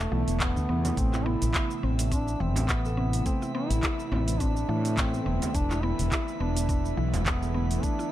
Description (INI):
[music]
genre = organic downtempo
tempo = 105 BPM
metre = 4/4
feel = swing 56% on 16ths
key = A minor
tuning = A4 = 440 Hz
[part]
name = mellow duduk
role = melody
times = 0.0-8.1 s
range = A3 to E4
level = -33 LUFS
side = equal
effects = dub echo
[part]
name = bowed-like drone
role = sustained chords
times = 0.0-8.1 s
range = C3 to B4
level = -38 LUFS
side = left 1 dB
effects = built-in reverb, sidechain pumping
[part]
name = fretless electric bass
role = bass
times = 0.0-7.8 s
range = E1 to A2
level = -28 LUFS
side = equal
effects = sidechain pumping
[part]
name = muted felt-like synth keys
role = accompaniment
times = 0.1-8.1 s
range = C3 to A4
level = -36 LUFS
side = right 4 dB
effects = chorus, sidechain pumping, tape echo
[part]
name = mallet-like synth pluck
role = arpeggios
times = 0.1-8.1 s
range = E3 to E4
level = -36 LUFS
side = left 1 dB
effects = chorus, dub echo
[part]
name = afro-pop drum kit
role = drums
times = 0.3-8.1 s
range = cabasa, handclaps, hi-hat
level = -33 LUFS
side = right 1 dB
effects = none
[part]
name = electronic kick drum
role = drums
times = 0.4-8.0 s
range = none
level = -29 LUFS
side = equal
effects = none
[part]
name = frame drum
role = percussion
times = 0.8-7.2 s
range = none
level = -39 LUFS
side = right 2 dB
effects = none
[part]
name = drifting glass-harmonics texture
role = texture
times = 1.5-8.1 s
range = E5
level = -43 LUFS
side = right 5 dB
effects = chorus, built-in reverb
[sound]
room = light reverb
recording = echo-heavy mix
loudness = -25 LUFS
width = side -13 dB against mid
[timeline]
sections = 0.0-8.1 A section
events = none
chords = 0.0 E7sus4